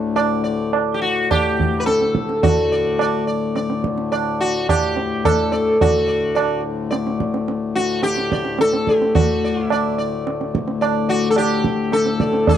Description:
indian classical, Hindustani; 107 BPM; 3/4; straight; A4 = 440 Hz
hand-pumped harmonium; drone; 0.0-12.6 s; D2 to A2; -23 LUFS; left 5 dB
sitar; melody; 0.2-12.6 s; F#4 to D5; -20 LUFS; left 1 dB
tabla; percussion; 0.2-12.6 s; -21 LUFS; right 5 dB
light reverb; dry, close 1970s-style studio recording; -17 LUFS; side -10 dB against mid
0.0-12.5 A section

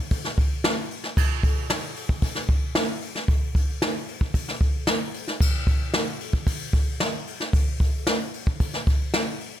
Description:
rock; 113 BPM; 4/4; straight
jazz brush drum kit; drums; 0.1-9.5 s; crash cymbal, hi-hat, kick drum, snare drum; -22 LUFS; equal
little or no reverb; -22 LUFS; side -11 dB against mid
0.0-9.6 A section

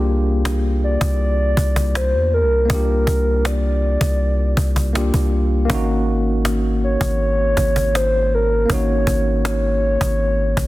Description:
contemporary R&B; 80 BPM; 4/4; straight; A4 = 439 Hz
tine electric piano; accompaniment; 0.0-10.7 s; Bb3 to G4; -24 LUFS; equal; medium stereo tremolo
warm 808-style bass; bass; 0.0-10.7 s; Ab1 to E2; -19 LUFS; equal
cajon; drums; 0.5-10.7 s; -24 LUFS; equal
hollow clarinet-like synth lead; melody; 0.8-10.7 s; Bb4 to D5; -21 LUFS; equal; chorus
little or no reverb; dense, heavily limited modern master; -16 LUFS; side -17 dB against mid
0.0-10.7 A section
0.0 C9sus4; 5.7 Ab9sus4

